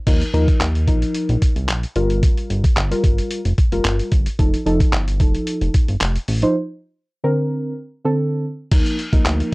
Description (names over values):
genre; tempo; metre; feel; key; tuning
dance-pop; 111 BPM; 4/4; straight; unclear; A4 = 441 Hz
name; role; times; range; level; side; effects
deep mellow chord stab; accompaniment; 0.1-9.5 s; D3 to C5; -21 LUFS; equal; chorus, sidechain pumping
chorused synth bass; bass; 0.1-9.4 s; F1 to Eb2; -20 LUFS; equal; transformer saturation, sidechain pumping
lo-fi sampler-style drum kit; drums; 0.1-9.5 s; crash cymbal, handclaps, hi-hat, kick drum; -18 LUFS; equal; none
room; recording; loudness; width
little or no reverb; dry, gritty hardware recording, cassette tape; -16 LUFS; side -23 dB against mid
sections
0.1-8.7 A section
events
break 6.6-8.7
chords
0.1 Ebsus2; 2.0 Gm7; 4.4 F7; 6.6 Bbadd9; 8.7 Ebsus2